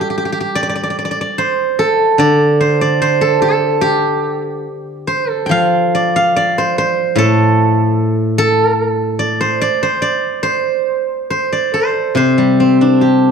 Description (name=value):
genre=chinese traditional, Chinese solo plucked strings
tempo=68-76 BPM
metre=2/4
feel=rubato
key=C zhi mode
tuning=A4 = 440 Hz
part: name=steel-string zither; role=solo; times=0.0-13.3 s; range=A2 to G5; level=-12 LUFS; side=right 1 dB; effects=none
room=moderate recital hall reverb, RT60 1.2 s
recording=dark, warm production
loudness=-12 LUFS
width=side -6 dB against mid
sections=0.0-12.2 A section; 12.2-13.3 B section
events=none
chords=none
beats=| 0.57 1.38 | 2.20 3.02 | 3.81 4.65 | 5.52 6.37 | 7.19 7.99 | 8.79 9.60 | 10.43 11.30 | 12.17 13.01